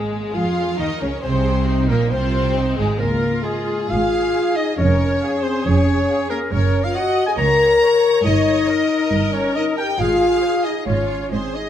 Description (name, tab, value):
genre	quick classical-period movement for symphony orchestra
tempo	137 BPM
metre	4/4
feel	rubato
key	Db major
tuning	A4 = 443 Hz
part	rich studio violin section	melody	0.0-11.7 s	Ab3 to F5	-31 LUFS	left 6 dB	none
part	bright wooden flute	second line	0.0-11.7 s	Ab4 to Bb5	-28 LUFS	left 1 dB	none
part	clear studio violin section	second line	0.0-11.7 s	Ab4 to Bb5	-28 LUFS	left 1 dB	none
part	warm clarinet	second line	0.0-11.7 s	Ab4 to Bb5	-26 LUFS	left 2 dB	none
part	mellow French horn section	sustained chords	0.0-11.7 s	Ab3 to Bb4	-20 LUFS	left 2 dB	none
part	rich studio cello section	bass	0.0-11.7 s	Db2 to F3	-25 LUFS	right 3 dB	none
part	rich studio double bass section	bass	0.0-11.7 s	F1 to F2	-23 LUFS	right 3 dB	none
part	clear studio viola section	accompaniment	0.3-11.7 s	Eb4 to Eb5	-27 LUFS	right 1 dB	none
part	timpani	percussion	3.0-3.6 s	Db3	-29 LUFS	left 1 dB	none
room	moderate concert hall reverb, RT60 1.9 s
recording	close, detailed microphones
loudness	-16 LUFS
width	side -10 dB against mid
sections	0.0-11.7 A section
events	none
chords	0.0 Db; 1.2 Ab; 3.0 Db; 4.8 Db/F; 6.5 Gb; 8.2 Eb7/G; 10.0 Ab; 10.9 Db/Ab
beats	0.35 0.79 | 1.23 1.68 2.12 2.56 | 3.00 3.44 3.90 4.35 | 4.78 5.22 5.66 6.09 | 6.52 6.95 7.38 7.81 | 8.25 8.69 9.12 9.56 | 10.00 10.44 10.88 11.32